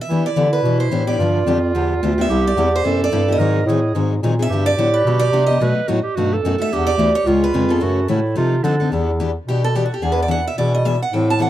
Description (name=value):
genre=acoustic string swing (jazz manouche)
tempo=218 BPM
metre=4/4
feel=swing 56% on 8ths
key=E minor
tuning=A4 = 439 Hz
part: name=picked steel-string acoustic guitar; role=melody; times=0.0-11.5 s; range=F#4 to A5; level=-21 LUFS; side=right 2 dB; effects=tape echo
part: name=clear clarinet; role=second line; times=0.1-8.9 s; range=D4 to B4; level=-22 LUFS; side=right 5 dB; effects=none
part: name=picked steel-string acoustic guitar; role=accompaniment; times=0.1-11.5 s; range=B2 to A4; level=-22 LUFS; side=left 6 dB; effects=none
part: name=warm bass clarinet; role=bass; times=0.1-11.5 s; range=C2 to E3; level=-19 LUFS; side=equal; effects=none
room=small room ambience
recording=dry, close 1970s-style studio recording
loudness=-15 LUFS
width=side -13 dB against mid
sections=0.1-8.9 A section; 8.9-11.5 B section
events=steel-string acoustic guitar solo 8.9-11.5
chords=0.1 Em7; 1.2 G7; 2.3 Cmaj7; 3.4 G#9; 4.5 Gmaj7; 5.6 B7; 6.7 Em7; 7.3 C#7; 7.8 F#m7; 8.4 F6; 8.9 Em7; 10.0 E7